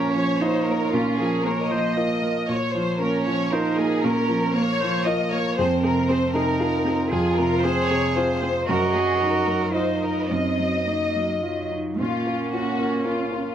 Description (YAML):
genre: neoclassical piano and strings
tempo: 115 BPM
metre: 3/4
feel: rubato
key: Bb minor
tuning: A4 = 440 Hz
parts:
  - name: muted studio violin section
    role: melody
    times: 0.0-13.5 s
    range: F4 to Eb5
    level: -26 LUFS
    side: left 2 dB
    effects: none
  - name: muted cello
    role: second line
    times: 0.0-13.5 s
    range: Gb3 to Ab4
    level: -25 LUFS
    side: right 4 dB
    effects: none
  - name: muted viola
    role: accompaniment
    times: 0.0-13.5 s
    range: Bb3 to Eb5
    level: -31 LUFS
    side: right 1 dB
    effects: none
  - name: warm concert grand piano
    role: accompaniment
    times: 0.0-13.5 s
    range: F2 to Bb4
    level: -25 LUFS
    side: equal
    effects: none
room: light reverb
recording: close, detailed microphones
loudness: -20 LUFS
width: side -9 dB against mid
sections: 0.0-12.0 A section; 12.0-13.5 B section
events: none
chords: 0.0 Bbm; 5.6 Fm; 8.7 Ebmadd9/Gb; 12.0 Bbm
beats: 0.42 | 0.94 1.46 1.98 | 2.49 3.01 3.52 | 4.04 4.55 5.07 | 5.58 6.08 6.59 | 7.11 7.64 8.16 | 8.68 9.20 9.74 | 10.30 10.86 11.42 | 11.99 12.52 13.04